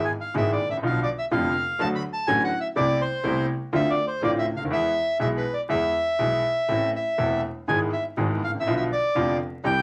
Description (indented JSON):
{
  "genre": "tango",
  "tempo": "122 BPM",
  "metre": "4/4",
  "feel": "rubato",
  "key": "unclear",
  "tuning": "A4 = 441 Hz",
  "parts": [
    { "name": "bandoneon", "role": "melody", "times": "0.0-9.8 s", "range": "B4 to B5", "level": "-27 LUFS", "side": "equal", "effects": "none" },
    { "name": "warm concert grand piano", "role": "accompaniment", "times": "0.0-9.8 s", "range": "E1 to A4", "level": "-28 LUFS", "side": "equal", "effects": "none" },
    { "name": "clear double bass", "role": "bass", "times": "0.0-9.8 s", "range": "E1 to E2", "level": "-35 LUFS", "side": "equal", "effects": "none" }
  ],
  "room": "moderate studio reverb, RT60 0.5 s",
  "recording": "vinyl crackle",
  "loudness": "-25 LUFS",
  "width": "mono",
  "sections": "0.0-9.8 A section",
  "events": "none",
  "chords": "0.0 E; 0.8 Bdim; 1.8 D; 2.8 Amadd9/C; 3.7 Dm7; 4.7 E; 6.7 Am; 7.7 E/G#; 8.7 Bdim"
}